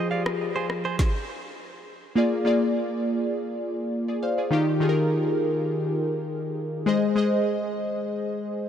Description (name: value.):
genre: afrobeats.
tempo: 102 BPM.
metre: 4/4.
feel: straight.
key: unclear.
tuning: A4 = 440 Hz.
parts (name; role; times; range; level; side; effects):
glassy digital keys; accompaniment; 0.0-8.7 s; Eb3 to F5; -23 LUFS; left 1 dB; chorus.
direct-recorded clean electric guitar; riff; 0.0-1.0 s; Ab4 to F5; -32 LUFS; right 4 dB; analog delay.
afro-pop drum kit; drums; 0.3-1.1 s; kick drum, rim click, snare drum; -29 LUFS; equal; none.
room: moderate huge ambient reverb, RT60 4.5 s.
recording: dreamy mix soaked in reverb.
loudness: -23 LUFS.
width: side -9 dB against mid.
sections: 0.0-2.2 A section; 2.2-8.7 B section.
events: stop 1.0-2.2.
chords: 0.0 Fmadd9; 2.2 Bb7; 4.5 Ebadd9; 6.9 Ab.